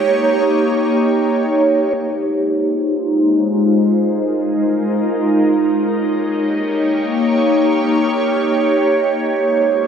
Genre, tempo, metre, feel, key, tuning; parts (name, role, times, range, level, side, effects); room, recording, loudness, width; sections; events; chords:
hip hop; free time; F minor; A4 = 440 Hz
ethereal airy pad; solo; 0.0-9.9 s; Ab3 to Db5; -14 LUFS; equal; ensemble chorus, built-in reverb, phaser, low-pass filter
wet lush hall reverb, RT60 2.6 s; dreamy mix soaked in reverb; -14 LUFS; side -7 dB against mid
0.0-1.9 A section; 1.9-9.2 B section
filter sweep on ambient pad 1.9-9.2
0.0 Eb7; 1.9 Fm7; 5.6 Eb7; 9.2 Fm7